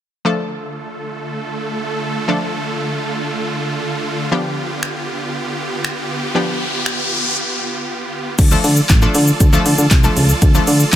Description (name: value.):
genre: dance-pop.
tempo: 118 BPM.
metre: 4/4.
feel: straight.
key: D dorian.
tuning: A4 = 437 Hz.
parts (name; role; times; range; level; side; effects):
analog pluck; accompaniment; 0.2-10.9 s; F3 to A4; -20 LUFS; left 1 dB; chorus, sidechain pumping.
supersaw chords; sustained chords; 0.3-11.0 s; D3 to A5; -22 LUFS; right 1 dB; sidechain pumping.
riser; sound effects; 6.1-7.4 s; none; -22 LUFS; left 1 dB; none.
pop drum kit; drums; 4.8-11.0 s; crash cymbal, finger snaps, handclaps, hi-hat, kick drum, shaker, snare drum; -14 LUFS; equal; overdrive.
solid FM bass; bass; 8.4-11.0 s; A1 to D3; -14 LUFS; equal; sidechain pumping.
room: light reverb, digital ambience.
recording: none.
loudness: -15 LUFS.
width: side -11 dB against mid.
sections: 0.3-8.4 A section; 8.4-11.0 B section.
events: riser 6.1-8.4; break 7.4-8.4.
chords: 0.3 Dm; 4.3 G7; 8.4 Dm.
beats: | 0.25 0.76 1.27 1.78 | 2.29 2.79 3.30 3.81 | 4.32 4.83 5.33 5.84 | 6.35 6.86 7.37 7.88 | 8.39 8.89 9.40 9.91 | 10.42 10.93.